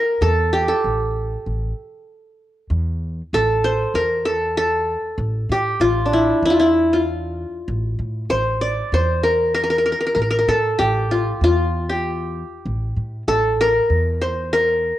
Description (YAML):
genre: Arabic maqam ensemble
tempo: 96 BPM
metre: 4/4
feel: straight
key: A maqam kurd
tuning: A4 = 439 Hz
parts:
  - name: qanun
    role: melody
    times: 0.0-15.0 s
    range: D4 to D5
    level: -18 LUFS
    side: equal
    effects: none
  - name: upright bass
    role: bass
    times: 0.2-14.9 s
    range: A1 to A2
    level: -23 LUFS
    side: equal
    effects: none
room: light reverb, small room ambience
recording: home recording on cassette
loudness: -17 LUFS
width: side -13 dB against mid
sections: 0.0-3.3 A section; 3.3-15.0 B section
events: none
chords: none